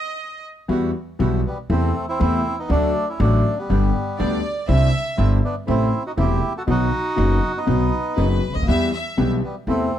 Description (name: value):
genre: tango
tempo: 120 BPM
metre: 4/4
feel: rubato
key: E minor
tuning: A4 = 442 Hz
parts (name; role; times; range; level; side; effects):
- clear chamber violin section; second line; 0.0-0.4, 4.2-9.3 s; B4 to E5; -27 LUFS; right 1 dB; none
- warm concert grand piano; accompaniment; 0.7-9.9 s; E1 to G4; -23 LUFS; left 4 dB; none
- bandoneon; stabs; 0.7-9.9 s; F#3 to G4; -32 LUFS; right 5 dB; none
- upright bass; bass; 0.7-9.9 s; E1 to E2; -21 LUFS; right 1 dB; none
- bandoneon; melody; 1.5-10.0 s; G3 to A4; -24 LUFS; right 1 dB; none
room: light reverb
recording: dark, warm production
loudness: -18 LUFS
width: side -11 dB against mid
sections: 0.7-10.0 A section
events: stop 0.0-0.7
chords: 0.0 N.C.; 0.7 Emadd9; 1.7 Am/E; 2.7 D; 3.7 G; 4.7 Cadd9; 5.7 Am; 6.7 B; 8.7 Em